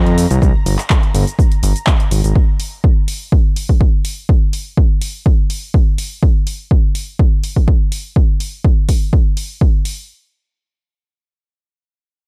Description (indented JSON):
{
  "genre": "deep house",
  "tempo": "124 BPM",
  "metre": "4/4",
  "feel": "swing 53% on 16ths",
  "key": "unclear",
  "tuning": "A4 = 440 Hz",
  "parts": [
    { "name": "smooth synth bass", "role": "bass", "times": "0.0-2.3 s", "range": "G1 to F2", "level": "-16 LUFS", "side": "equal", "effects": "sidechain pumping" },
    { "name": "analog string pad", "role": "texture", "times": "0.0-2.4 s", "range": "Bb5", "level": "-36 LUFS", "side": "equal", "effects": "ensemble chorus, sidechain pumping" },
    { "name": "punchy analog drum machine", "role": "drums", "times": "0.1-10.0 s", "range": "handclaps, hi-hat, shaker", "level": "-27 LUFS", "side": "equal", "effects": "overdrive" },
    { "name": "electronic kick drum", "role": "drums", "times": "0.4-9.7 s", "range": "none", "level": "-15 LUFS", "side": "equal", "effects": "overdrive" }
  ],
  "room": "little or no reverb",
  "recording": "none",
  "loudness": "-15 LUFS",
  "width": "mono",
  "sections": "0.0-10.1 A section; 10.1-12.3 B section",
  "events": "none",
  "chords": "0.0 C7(no3) (rootless); 2.1 Absus2; 10.1 N.C."
}